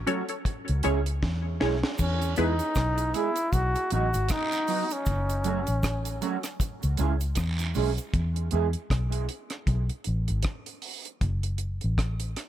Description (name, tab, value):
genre	dub reggae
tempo	78 BPM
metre	4/4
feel	swing 59% on 16ths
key	E major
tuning	A4 = 442 Hz
part	vintage muted fingered electric bass	bass	0.0-12.3 s	F#1 to E2	-27 LUFS	equal	none
part	mellow electric guitar	accompaniment	0.1-8.7 s	F#3 to G#4	-33 LUFS	right 8 dB	analog chorus, tape echo
part	filtered dub chord stab	stabs	0.1-2.6 s	B3 to C#5	-32 LUFS	left 3 dB	phaser, tape echo
part	deep reggae drum kit	drums	0.1-12.5 s	crash cymbal, hi-hat, kick drum, rim click, snare drum	-31 LUFS	equal	none
part	bright trombone	melody	2.0-6.5 s	C#4 to F#4	-29 LUFS	equal	tape echo
part	cabasa and guiro	percussion	2.0-8.1 s	none	-41 LUFS	right 4 dB	tape echo
room	light reverb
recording	none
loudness	-25 LUFS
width	side -12 dB against mid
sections	0.0-12.5 A section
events	break 0.0-2.0; drum fill 1.2-2.0; part muted 8.1-12.5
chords	0.5 C#m; 2.0 E; 3.5 B; 5.1 F#m; 6.6 C#m; 8.1 E; 9.7 G#m; 11.2 F#m